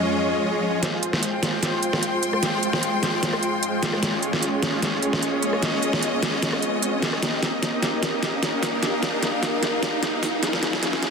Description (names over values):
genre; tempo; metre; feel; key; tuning
heavy wobble dubstep; 150 BPM; 4/4; half-time; F minor; A4 = 443 Hz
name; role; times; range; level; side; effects
supersaw chords; sustained chords; 0.0-11.1 s; F2 to F5; -27 LUFS; right 1 dB; low-pass filter
rich symphonic string section; texture; 0.0-11.1 s; F3 to C6; -26 LUFS; left 2 dB; none
dubstep drum kit; drums; 0.8-11.1 s; hi-hat, rim click, snare drum; -24 LUFS; equal; none
riser; sound effects; 2.2-11.1 s; none; -31 LUFS; right 1 dB; none
room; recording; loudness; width
moderate digital room reverb, RT60 1.1 s, digital ambience; dense, heavily limited modern master, high-pass filter; -21 LUFS; side -5 dB against mid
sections
0.8-11.1 A section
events
build-up 0.8-11.1; drum fill 0.8-11.1; filter sweep on supersaw synth 0.8-11.1; riser 2.2-11.1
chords
0.0 Db/F; 0.8 Fm; 4.0 Db; 7.2 Eb; 10.4 Db/F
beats
0.03 0.43 | 0.83 1.23 1.63 2.03 | 2.43 2.83 3.23 3.63 | 4.03 4.43 4.83 5.23 | 5.63 6.03 6.43 6.83 | 7.23 7.63 8.03 8.43 | 8.83 9.23 9.63 10.03 | 10.43 10.83